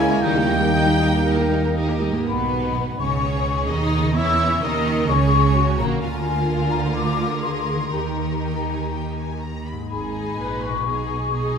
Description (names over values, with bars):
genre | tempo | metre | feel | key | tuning
classical, dramatic, fast romantic movement for symphony orchestra | 115-131 BPM | 4/4 | rubato | G# minor | A4 = 442 Hz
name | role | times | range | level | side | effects
rich symphonic violin section | melody | 0.0-11.6 s | A#4 to B5 | -34 LUFS | left 2 dB | none
dark clarinet | second line | 0.0-2.3 s | D#4 to A#4 | -27 LUFS | right 1 dB | none
mellow hollow small flute group | second line | 0.0-11.6 s | G5 to E6 | -26 LUFS | left 6 dB | none
warm oboe | second line | 0.0-1.8 s | G5 to G#5 | -27 LUFS | right 2 dB | none
warm studio violin section | second line | 0.0-11.6 s | A#3 to E5 | -30 LUFS | left 1 dB | none
mellow bassoon | accompaniment | 0.0-2.0 s | A#3 | -28 LUFS | right 2 dB | none
rich symphonic viola section | accompaniment | 0.0-11.6 s | G3 to C#5 | -29 LUFS | right 2 dB | none
mellow French horn section | sustained chords | 0.0-1.7 s | G3 to G#3 | -25 LUFS | left 2 dB | none
concert harp | arpeggios | 0.0-11.6 s | G#2 to C#6 | -29 LUFS | left 6 dB | none
rich symphonic cello section | bass | 0.0-11.6 s | G#2 to E4 | -27 LUFS | right 3 dB | none
warm studio double bass section | bass | 0.0-11.6 s | G#1 to E2 | -24 LUFS | right 4 dB | none
room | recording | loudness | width
wet scoring stage reverb, RT60 1.9 s | minimal, uncompressed stereo recording | -19 LUFS | side -6 dB against mid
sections
0.0-2.3 A section; 2.3-11.6 B section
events
none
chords
0.2 D#; 2.3 G#m/B; 3.2 G#m; 4.2 A#m7b5; 6.0 A#7/D; 7.9 D#; 9.9 G#m; 10.9 G#m/B